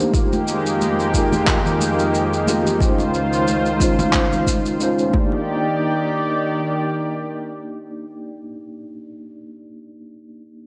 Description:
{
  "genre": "sunset chillout",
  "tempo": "90 BPM",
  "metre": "4/4",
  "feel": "swing 54% on 16ths",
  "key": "Eb major",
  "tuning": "A4 = 440 Hz",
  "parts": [
    { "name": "mellow tine electric piano", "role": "accompaniment", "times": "0.0-10.7 s", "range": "Ab3 to D5", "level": "-25 LUFS", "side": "equal", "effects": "low-pass filter, tape echo" },
    { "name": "lush unison pad", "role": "sustained chords", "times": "0.0-8.4 s", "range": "Db2 to D5", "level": "-24 LUFS", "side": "equal", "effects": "chorus" },
    { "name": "electronic shaker and handclaps", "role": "drums", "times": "0.0-5.1 s", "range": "none", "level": "-28 LUFS", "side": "equal", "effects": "none" },
    { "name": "electronic kick drum", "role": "drums", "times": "0.1-5.3 s", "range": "none", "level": "-23 LUFS", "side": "equal", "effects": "none" },
    { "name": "congas", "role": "percussion", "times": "0.3-5.4 s", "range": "none", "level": "-29 LUFS", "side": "equal", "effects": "none" }
  ],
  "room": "wet lush hall reverb, RT60 2.1 s",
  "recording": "worn, warbling old tape, cassette tape, warbly pitch drift, nothing above 10.9 kHz",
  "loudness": "-19 LUFS",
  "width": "mono",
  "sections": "0.0-5.5 A section; 5.5-8.1 B section",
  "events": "none",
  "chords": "0.1 Fm11; 2.8 Dbmaj9; 5.1 Ebmaj7",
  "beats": "| 0.14 0.80 1.47 2.14 | 2.80 3.47 4.14 4.80 | 5.47 6.14 6.80 7.47"
}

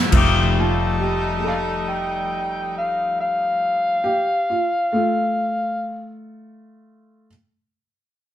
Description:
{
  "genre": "blues",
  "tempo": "46 BPM (dotted quarters)",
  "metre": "12/8",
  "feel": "straight",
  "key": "F mixolydian",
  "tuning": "A4 = 438 Hz",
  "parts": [
    { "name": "clear horn section", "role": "sustained chords", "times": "0.0-4.3 s", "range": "G3 to Fb4", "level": "-29 LUFS", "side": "right 1 dB", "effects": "none" },
    { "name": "vintage muted fingered electric bass", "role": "bass", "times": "0.0-4.3 s", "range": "F1", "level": "-24 LUFS", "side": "right 1 dB", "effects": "none" },
    { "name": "semi-hollow electric guitar", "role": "accompaniment", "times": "0.1-4.4 s", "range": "F3 to G4", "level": "-25 LUFS", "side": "left 5 dB", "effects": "harmonic tremolo" },
    { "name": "overdriven harmonica", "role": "melody", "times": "0.6-6.1 s", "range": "D5 to A5", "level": "-21 LUFS", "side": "left 1 dB", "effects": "none" },
    { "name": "dark upright piano", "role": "second line", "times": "0.6-7.3 s", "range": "A3 to A4", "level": "-26 LUFS", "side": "right 2 dB", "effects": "none" }
  ],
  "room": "moderate studio reverb, RT60 0.8 s",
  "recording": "band playing live in one room",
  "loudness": "-19 LUFS",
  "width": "side -11 dB against mid",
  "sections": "0.1-5.4 A section",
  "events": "none",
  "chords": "0.1 F9",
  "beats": "| 0.14 1.45 2.75 4.06"
}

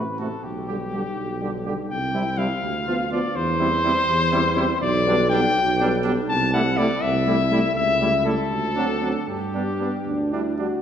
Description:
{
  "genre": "classical, brass quintet",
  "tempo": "82 BPM (dotted quarters)",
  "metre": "6/8",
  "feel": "rubato",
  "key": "G major",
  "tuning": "A4 = 440 Hz",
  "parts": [
    { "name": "warm cornet", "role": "melody", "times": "0.0-10.6 s", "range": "G4 to A5", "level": "-23 LUFS", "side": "left 3 dB", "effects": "none" },
    { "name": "warm trumpet", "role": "second line", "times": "0.0-10.7 s", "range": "D4 to G4", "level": "-33 LUFS", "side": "right 4 dB", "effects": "none" },
    { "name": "clear trombone", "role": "accompaniment", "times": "0.0-10.7 s", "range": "C3 to G3", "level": "-32 LUFS", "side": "right 2 dB", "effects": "none" },
    { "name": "mellow French horn", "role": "accompaniment", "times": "0.0-10.8 s", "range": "G3 to F#4", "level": "-28 LUFS", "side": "equal", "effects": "none" },
    { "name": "mellow tuba", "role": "bass", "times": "0.0-10.7 s", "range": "A1 to G2", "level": "-25 LUFS", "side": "right 2 dB", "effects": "none" }
  ],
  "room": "wet scoring stage reverb, RT60 2.0 s",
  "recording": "heard from further back in the room",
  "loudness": "-20 LUFS",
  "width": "side -8 dB against mid",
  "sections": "0.0-10.8 A section",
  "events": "none",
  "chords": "0.4 G/B; 1.9 C; 2.6 Bdim/D; 3.4 C/E; 4.8 G/B; 6.3 Am7/C; 7.8 A7/C#; 8.5 D7; 9.3 G",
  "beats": "| 0.44 1.18 | 1.90 2.63 | 3.36 4.08 | 4.82 5.57 | 6.30 7.03 | 7.76 8.52 | 9.28 10.06"
}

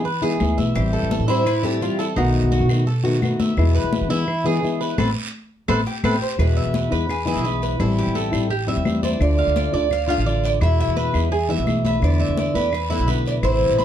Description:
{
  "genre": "latin, Cuban son and guajira",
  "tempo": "170 BPM",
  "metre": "4/4",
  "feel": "straight",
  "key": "A minor",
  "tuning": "A4 = 437 Hz",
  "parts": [
    { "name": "nylon-string guitar", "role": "accompaniment", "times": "0.0-13.8 s", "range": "B2 to F#4", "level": "-23 LUFS", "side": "left 3 dB", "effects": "none" },
    { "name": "Cuban tres", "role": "arpeggios", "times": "0.0-13.8 s", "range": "D#4 to B5", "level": "-26 LUFS", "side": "right 4 dB", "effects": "none" },
    { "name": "upright bass", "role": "bass", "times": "0.0-13.8 s", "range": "A1 to E3", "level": "-22 LUFS", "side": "right 1 dB", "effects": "none" },
    { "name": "congas", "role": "percussion", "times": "0.1-13.8 s", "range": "none", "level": "-26 LUFS", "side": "left 3 dB", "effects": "none" },
    { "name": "guiro", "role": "percussion", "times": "0.1-13.8 s", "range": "none", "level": "-36 LUFS", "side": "right 6 dB", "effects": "none" },
    { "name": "claves", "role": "percussion", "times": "0.4-13.6 s", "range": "none", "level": "-35 LUFS", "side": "left 3 dB", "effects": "none" },
    { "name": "Cuban tres", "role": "melody", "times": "0.8-2.7, 5.9-13.8 s", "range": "E4 to F5", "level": "-25 LUFS", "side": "right 1 dB", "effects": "none" }
  ],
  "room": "light reverb",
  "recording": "dark, warm production",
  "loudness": "-18 LUFS",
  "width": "side -10 dB against mid",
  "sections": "0.0-6.4 A section; 6.4-13.8 B section",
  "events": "band accent 5.0-6.4",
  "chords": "0.0 E; 0.8 Am7; 2.2 B7; 3.6 E; 5.0 Amadd9; 6.4 E; 7.8 Am7; 9.2 Dm; 10.6 E; 12.0 E7sus4",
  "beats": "0.05 0.41 | 0.76 1.11 1.46 1.81 | 2.17 2.52 2.87 3.22 | 3.57 3.93 4.28 4.63 | 4.98 5.33 5.69 6.04 | 6.39 6.74 7.10 7.45 | 7.80 8.15 8.51 8.86 | 9.21 9.56 9.91 10.27 | 10.62 10.97 11.32 11.67 | 12.03 12.38 12.73 13.08 | 13.43 13.78"
}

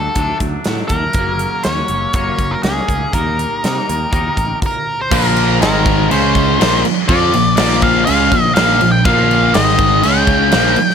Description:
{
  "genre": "quiet-loud alternative rock",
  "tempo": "122 BPM",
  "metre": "4/4",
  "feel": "straight",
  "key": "unclear",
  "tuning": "A4 = 440 Hz",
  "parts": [
    { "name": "octave-fuzz lead guitar", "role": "melody", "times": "0.0-10.9 s", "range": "Ab4 to G5", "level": "-17 LUFS", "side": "equal", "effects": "distortion" },
    { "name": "twangy electric guitar", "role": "arpeggios", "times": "0.0-4.6 s", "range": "Gb2 to Eb4", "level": "-23 LUFS", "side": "left 2 dB", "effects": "lush chorus" },
    { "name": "picked electric bass", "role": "bass", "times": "0.0-10.8 s", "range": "Gb1 to C3", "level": "-20 LUFS", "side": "equal", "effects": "none" },
    { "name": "big rock drum kit", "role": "drums", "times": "0.2-10.9 s", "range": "crash cymbal, hi-hat, kick drum, snare drum", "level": "-18 LUFS", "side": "equal", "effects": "none" },
    { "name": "distorted electric guitar", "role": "riff", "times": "5.1-10.8 s", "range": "Ab2 to F4", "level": "-18 LUFS", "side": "left 14 dB", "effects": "overdrive" },
    { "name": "fuzz guitar", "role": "riff", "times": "5.1-10.8 s", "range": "Ab2 to F4", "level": "-20 LUFS", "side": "right 1 dB", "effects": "distortion" },
    { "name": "thick fuzz guitar", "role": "riff", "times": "5.1-10.8 s", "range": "Ab2 to F4", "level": "-18 LUFS", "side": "right 12 dB", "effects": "distortion" }
  ],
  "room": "studio reverb",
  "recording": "none",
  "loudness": "-12 LUFS",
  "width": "side -7 dB against mid",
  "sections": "0.0-5.1 A section; 5.1-10.9 B section",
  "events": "none",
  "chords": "0.0 D; 1.2 Gb; 3.1 Eb; 5.1 Bb5; 5.6 Ab5; 6.1 Db5; 6.6 Bb; 9.5 Ab5; 10.0 Db5",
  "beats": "0.16 0.66 | 1.16 1.65 2.15 2.65 | 3.14 3.64 4.13 4.63 | 5.12 5.61 6.11 6.60 | 7.09 7.58 8.07 8.56 | 9.05 9.54 10.03 10.52"
}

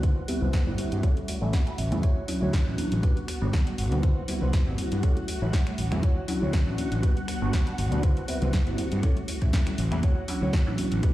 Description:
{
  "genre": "filtered disco house",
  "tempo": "120 BPM",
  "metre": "4/4",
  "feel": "swing 54% on 16ths",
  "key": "D major",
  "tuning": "A4 = 440 Hz",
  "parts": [
    { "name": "funky polysynth comp", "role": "accompaniment", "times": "0.0-11.1 s", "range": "F#3 to F#5", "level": "-32 LUFS", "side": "equal", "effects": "chorus, phaser, sidechain pumping, low-pass filter" },
    { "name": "string machine, full ensemble", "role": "sustained chords", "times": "0.0-11.1 s", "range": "F#4 to F#5", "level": "-39 LUFS", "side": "right 1 dB", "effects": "phaser, ensemble chorus, sidechain pumping, low-pass filter" },
    { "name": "mellow electric guitar", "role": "riff", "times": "0.0-11.1 s", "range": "E4 to F#5", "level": "-38 LUFS", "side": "right 1 dB", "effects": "vintage 12-bit sampler grit, sidechain pumping, low-pass filter" },
    { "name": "electronic kick drum", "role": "drums", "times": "0.0-11.1 s", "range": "none", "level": "-24 LUFS", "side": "equal", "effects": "studio reverb" },
    { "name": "house drum kit", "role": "drums", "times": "0.0-11.1 s", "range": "finger snaps, hi-hat, snare drum", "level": "-36 LUFS", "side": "equal", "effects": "sidechain pumping on hats, studio reverb" },
    { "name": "tambourine and congas", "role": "percussion", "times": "0.0-11.1 s", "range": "none", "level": "-37 LUFS", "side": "left 2 dB", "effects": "sidechain pumping on perc, low-pass filter on perc" },
    { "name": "fuzz fingered electric bass", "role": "bass", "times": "0.4-11.0 s", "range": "G1 to G2", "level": "-29 LUFS", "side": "equal", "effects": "overdrive, tube saturation, sidechain pumping, low-pass filter" }
  ],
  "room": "little or no reverb",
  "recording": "played on a big sound system in a bare room, large studio reverb",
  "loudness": "-23 LUFS",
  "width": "side -15 dB against mid",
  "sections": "0.0-11.1 A section",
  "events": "filter sweep 0.0-11.1; clean electric guitar fill 1.3-2.0",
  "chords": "0.0 Cmaj7; 1.0 A7; 2.0 Dmaj9; 3.0 Gmaj7; 4.0 Cmaj7; 5.0 A7; 6.0 Dmaj9; 7.0 Gmaj7; 8.0 Cmaj7; 9.0 A7; 10.0 Dmaj9",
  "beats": "| 0.03 0.53 1.03 1.53 | 2.03 2.53 3.03 3.53 | 4.03 4.53 5.03 5.53 | 6.03 6.53 7.03 7.53 | 8.03 8.53 9.03 9.53 | 10.03 10.53 11.03"
}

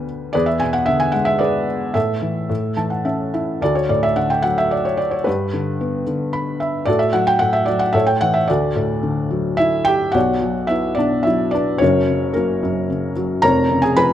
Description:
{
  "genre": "classical, lyrical solo piano",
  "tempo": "110 BPM",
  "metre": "3/4",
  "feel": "rubato",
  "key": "D major, B minor from 10.2 s",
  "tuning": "A4 = 440 Hz",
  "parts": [
    { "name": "felt-muted upright piano", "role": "solo", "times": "0.0-14.1 s", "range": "E#1 to B5", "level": "-16 LUFS", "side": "equal", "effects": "none" }
  ],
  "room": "light reverb",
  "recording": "close, detailed microphones",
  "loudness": "-16 LUFS",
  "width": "side -11 dB against mid",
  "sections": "0.0-10.2 A section; 10.2-14.1 B section",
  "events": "felt piano fill 2.5-3.6, 6.1-6.9",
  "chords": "0.3 E7; 2.0 A5; 2.5 A; 3.6 D; 5.3 G; 6.9 Em11/A; 7.9 A; 8.5 Dadd9; 10.2 Bmadd9; 11.8 F#; 13.4 C#7/E#",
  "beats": "| 0.34 0.87 1.41 | 1.95 2.50 3.05 | 3.61 4.17 4.72 | 5.27 5.80 6.34 | 6.88 7.41 7.94 | 8.49 9.03 9.59 | 10.15 10.70 11.26 | 11.81 12.35 12.89 | 13.42 13.96"
}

